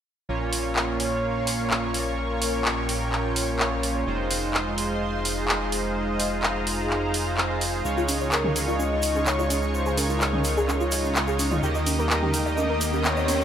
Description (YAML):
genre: progressive house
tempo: 127 BPM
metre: 4/4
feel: straight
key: unclear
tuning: A4 = 438 Hz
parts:
  - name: lush unison pad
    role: sustained chords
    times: 1.0-13.4 s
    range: Ab4 to Eb6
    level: -31 LUFS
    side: left 2 dB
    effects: chorus, phaser
  - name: soft supersaw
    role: stabs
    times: 0.3-13.4 s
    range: Bb2 to Eb5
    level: -27 LUFS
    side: right 2 dB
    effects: tape echo
  - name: fat analog bass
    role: bass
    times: 0.3-13.4 s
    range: F1 to Eb2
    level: -30 LUFS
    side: left 1 dB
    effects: none
  - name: pop drum kit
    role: drums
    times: 0.5-13.4 s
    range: handclaps, hi-hat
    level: -27 LUFS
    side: equal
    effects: small room ambience
  - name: egg shaker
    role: percussion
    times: 7.9-13.4 s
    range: none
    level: -37 LUFS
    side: equal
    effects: none
  - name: soft round pluck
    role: arpeggios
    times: 8.0-13.4 s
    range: F4 to G5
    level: -32 LUFS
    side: left 1 dB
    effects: ensemble chorus, tape echo
  - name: electronic congas, toms and bongos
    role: percussion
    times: 8.1-13.4 s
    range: none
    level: -31 LUFS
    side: right 1 dB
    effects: overdrive, small room ambience
  - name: warm velvety synth lead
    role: melody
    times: 8.3-13.4 s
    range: Bb4 to Eb5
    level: -30 LUFS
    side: left 1 dB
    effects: chorus, tape echo
  - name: riser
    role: sound effects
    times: 12.0-13.4 s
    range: none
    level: -32 LUFS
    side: equal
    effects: none
room: light reverb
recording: none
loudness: -22 LUFS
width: side -9 dB against mid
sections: 0.3-13.4 A section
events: riser 12.0-13.4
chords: 0.3 Bbm; 4.1 Fm7; 7.8 Dbadd9; 11.6 Eb